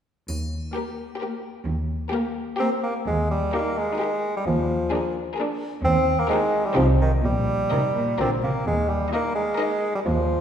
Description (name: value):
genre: cinematic, playful, whimsical film cue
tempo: 130 BPM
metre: 3/4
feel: straight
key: Eb major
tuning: A4 = 440 Hz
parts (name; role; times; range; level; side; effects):
- bright symphonic cello section; bass; 0.3-10.4 s; Eb2 to D3; -26 LUFS; right 1 dB; none
- triangle; percussion; 0.3-1.2 s; none; -42 LUFS; left 2 dB; none
- rich chamber violin section; melody; 0.7-9.9 s; Bb4 to Eb5; -35 LUFS; left 5 dB; none
- rich chamber violin section; second line; 0.8-9.9 s; G4 to Bb4; -32 LUFS; left 3 dB; none
- rich chamber viola section; accompaniment; 0.8-9.9 s; Bb3 to F4; -32 LUFS; equal; none
- clear bassoon; accompaniment; 2.6-10.4 s; Eb3 to C4; -23 LUFS; equal; none
- clear chamber double bass section; bass; 3.1-10.4 s; Bb1 to Eb2; -27 LUFS; right 1 dB; none
room: wet scoring stage reverb, RT60 1.9 s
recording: heard from further back in the room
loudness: -21 LUFS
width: side -8 dB against mid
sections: 0.3-3.1 A section; 3.1-10.4 B section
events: none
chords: 0.3 Eb; 4.5 Bb7/Eb; 5.8 Eb; 6.8 Cm; 7.2 Eb/Bb; 8.2 Bb; 8.7 Eb5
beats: | 0.28 0.75 1.21 | 1.66 2.12 2.60 | 3.08 3.54 4.01 | 4.47 4.93 5.39 | 5.84 6.30 6.76 | 7.24 7.71 8.19 | 8.67 9.14 9.59 | 10.06